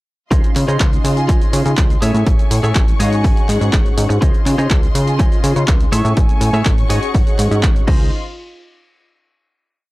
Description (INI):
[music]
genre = filtered disco house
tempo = 123 BPM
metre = 4/4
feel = straight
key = Db major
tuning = A4 = 441 Hz
[part]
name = mellow synth brass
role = accompaniment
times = 0.3-8.1 s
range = A3 to C6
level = -25 LUFS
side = equal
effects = chorus, phaser, sidechain pumping
[part]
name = warm studio string section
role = sustained chords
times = 0.3-8.1 s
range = A3 to C#6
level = -28 LUFS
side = left 2 dB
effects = sidechain pumping
[part]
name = direct-recorded clean electric guitar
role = riff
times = 0.3-8.1 s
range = F4 to E5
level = -26 LUFS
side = equal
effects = vintage 12-bit sampler grit, sidechain pumping
[part]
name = plucky analog bass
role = bass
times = 0.3-8.1 s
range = Ab1 to Db3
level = -17 LUFS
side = equal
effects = sidechain pumping
[part]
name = electronic kick drum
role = drums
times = 0.3-8.0 s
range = none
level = -15 LUFS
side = equal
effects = overdrive
[part]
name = punchy analog drum machine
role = drums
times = 0.3-8.0 s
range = crash cymbal, handclaps, hi-hat, shaker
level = -24 LUFS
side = equal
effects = sidechain pumping on hats, sidechain pumping on perc, sidechain pumping on cymbals
[part]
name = hollow concert flute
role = melody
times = 1.2-6.7 s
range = F5 to C#6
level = -26 LUFS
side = right 1 dB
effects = sidechain pumping, tape echo
[sound]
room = digital ambience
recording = dry, gritty hardware recording, transformer saturation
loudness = -12 LUFS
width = side -19 dB against mid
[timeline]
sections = 0.3-8.1 drop; 8.1-9.9 final hit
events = drop 0.3-8.1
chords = 0.3 Dbmaj9; 2.0 Amaj7; 3.0 Ab7sus4; 4.2 Dbmaj9; 5.9 Amaj7; 6.9 Ab7sus4; 7.9 Dbmaj9; 8.1 N.C.